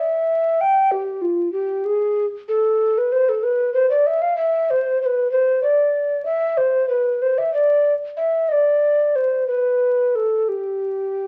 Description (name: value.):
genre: classical, baroque-style fantasia for unaccompanied recorder.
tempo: 63 BPM (dotted quarters).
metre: 6/8.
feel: rubato.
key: G major from 4.7 s.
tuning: A4 = 437 Hz.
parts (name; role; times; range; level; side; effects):
mellow hollow tenor recorder; solo; 0.0-11.3 s; F4 to G5; -19 LUFS; equal; none.
room: moderate large studio reverb, RT60 0.9 s.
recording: very old 78 rpm record, vinyl crackle.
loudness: -19 LUFS.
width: mono.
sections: 0.0-11.3 A section.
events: none.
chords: none.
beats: | 0.91 1.85 | 2.79 3.73 | 4.69 5.64 | 6.59 7.55 | 8.51 9.49 | 10.51.